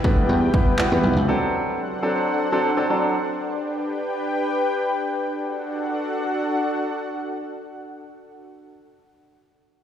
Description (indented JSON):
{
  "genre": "dance-pop",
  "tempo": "free time",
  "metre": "none",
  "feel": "none",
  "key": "D major",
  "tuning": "A4 = 444 Hz",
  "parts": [
    { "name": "clear baby grand piano", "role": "accompaniment", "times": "0.0-3.1 s", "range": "F#3 to B4", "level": "-22 LUFS", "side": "equal", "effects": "sidechain pumping, slapback echo" },
    { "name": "lush unison pad", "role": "sustained chords", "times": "0.0-8.5 s", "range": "F#3 to G5", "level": "-25 LUFS", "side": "equal", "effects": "chorus, sidechain pumping" },
    { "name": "dry thumbed slap bass", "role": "bass", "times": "0.0-1.3 s", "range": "B1 to E2", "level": "-19 LUFS", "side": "equal", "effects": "sidechain pumping" },
    { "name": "punchy analog drum machine", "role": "drums", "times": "0.0-0.9 s", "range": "handclaps, kick drum", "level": "-20 LUFS", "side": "equal", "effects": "none" },
    { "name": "downlifter", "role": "sound effects", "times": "0.0-1.3 s", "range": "none", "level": "-44 LUFS", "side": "right 1 dB", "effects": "none" }
  ],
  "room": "moderate club reverb, RT60 0.7 s",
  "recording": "live gig heard through the venue's PA, recital hall reverb",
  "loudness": "-20 LUFS",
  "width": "side -9 dB against mid",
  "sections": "0.0-5.2 A section; 5.2-9.2 B section",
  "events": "none",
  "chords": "0.0 Em; 1.3 D7/F#; 3.3 G; 5.2 D",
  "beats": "free time"
}